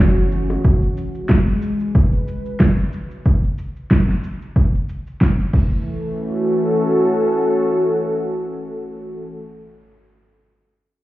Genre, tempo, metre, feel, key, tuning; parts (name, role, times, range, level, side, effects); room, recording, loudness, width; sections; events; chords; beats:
organic downtempo; 92 BPM; 4/4; swing 55% on 16ths; F# minor; A4 = 440 Hz
warm analog pad; sustained chords; 0.0-9.2 s; E3 to C#5; -20 LUFS; equal; chorus, sidechain pumping
woody FM bass; bass; 0.0-0.6 s; F#1; -21 LUFS; equal; sidechain pumping
deep house drum kit; drums; 0.2-5.7 s; crash cymbal, shaker, snare drum; -19 LUFS; equal; overdrive
bongos; percussion; 0.5-0.6 s; -32 LUFS; left 1 dB
electronic kick drum; drums; 0.6-5.7 s; -16 LUFS; equal; overdrive
moderate lush hall reverb, RT60 1.9 s; heard muffled through a wall, club reverb, EQ, faint mains hum; -16 LUFS; side -16 dB against mid
0.0-5.9 A section; 5.9-8.5 B section
0.0 F#m7; 0.6 E69; 3.3 N.C.; 5.5 Esus4; 5.9 F#m7
| 0.64 1.29 1.95 2.60 | 3.25 3.90 4.56 5.21 | 5.86 6.51 7.17 7.82